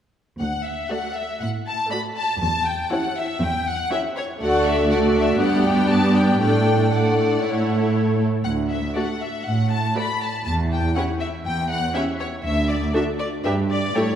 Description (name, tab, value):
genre	quick classical-period movement for symphony orchestra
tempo	120 BPM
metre	4/4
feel	straight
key	D major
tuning	A4 = 440 Hz
part	rich chamber violin section	melody	0.4-14.2 s	C#5 to B5	-25 LUFS	left 3 dB	none
part	warm studio cello section	bass	0.4-14.2 s	D2 to A2	-23 LUFS	right 2 dB	none
part	rich chamber violin section	second line	0.9-14.0 s	G4 to D5	-26 LUFS	left 1 dB	none
part	rich studio viola section	accompaniment	0.9-14.0 s	A3 to G4	-24 LUFS	right 1 dB	none
room	wet concert hall reverb, RT60 2.0 s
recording	heard from further back in the room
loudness	-19 LUFS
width	side -9 dB against mid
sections	0.4-14.2 A section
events	none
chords	0.4 D; 2.4 C#dim/E; 4.4 D; 5.4 G; 6.4 D/A; 7.4 A; 8.4 D; 10.5 C#dim/E (rootless); 12.4 N.C.; 13.4 G5